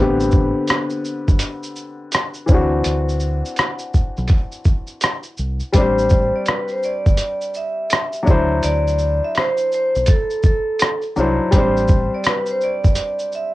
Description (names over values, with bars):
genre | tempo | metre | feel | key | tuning
lo-fi hip hop | 83 BPM | 4/4 | swing 65% on 16ths | A dorian | A4 = 437 Hz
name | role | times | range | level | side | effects
warm upright piano | accompaniment | 0.0-13.5 s | D3 to C5 | -22 LUFS | left 2 dB | cassette tape
deep dub fingered electric bass | bass | 0.0-13.0 s | F#1 to D2 | -22 LUFS | equal | none
dusty soul sampler-style drum kit | drums | 0.2-13.5 s | hi-hat, kick drum, rim click, shaker | -17 LUFS | equal | vintage 12-bit sampler grit, cassette tape
vibraphone with medium hard mallets | melody | 5.8-13.5 s | A4 to E5 | -21 LUFS | right 1 dB | cassette tape
room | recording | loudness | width
light reverb | home recording on cassette | -16 LUFS | side -17 dB against mid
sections
0.0-13.5 A section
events
break 0.0-5.7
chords
0.0 Am11; 2.5 D9; 5.7 Am7; 8.3 D9; 11.5 Am7